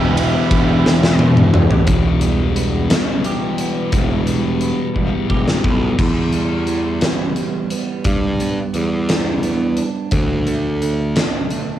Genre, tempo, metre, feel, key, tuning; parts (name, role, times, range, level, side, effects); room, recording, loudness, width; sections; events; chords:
quiet-loud alternative rock; 58 BPM (dotted quarters); 6/8; straight; A4 = 442 Hz
nasal lead guitar with a parked wah; melody; 0.0-1.2 s; G5; -36 LUFS; left 2 dB
crunchy overdriven guitar; riff; 0.0-1.9 s; E3 to G4; -20 LUFS; right 7 dB; phaser, cassette tape
thick fuzz guitar; riff; 0.0-6.0 s; E2 to E3; -21 LUFS; left 6 dB; distortion, cassette tape
fuzz picked electric bass; bass; 0.0-11.2 s; E1 to G2; -19 LUFS; equal; overdrive
huge arena drum kit; drums; 0.2-11.7 s; crash cymbal, hi-hat, kick drum, ride cymbal, snare drum, toms; -18 LUFS; equal
clean electric guitar; arpeggios; 1.9-11.8 s; E2 to G4; -23 LUFS; right 6 dB; phaser, cassette tape
light reverb; home recording on cassette; -15 LUFS; side -12 dB against mid
0.0-1.9 A section; 1.9-6.0 B section; 6.0-11.8 C section
drum fill 0.9-1.9, 5.0-6.0
0.0 Em; 8.1 G; 10.1 D5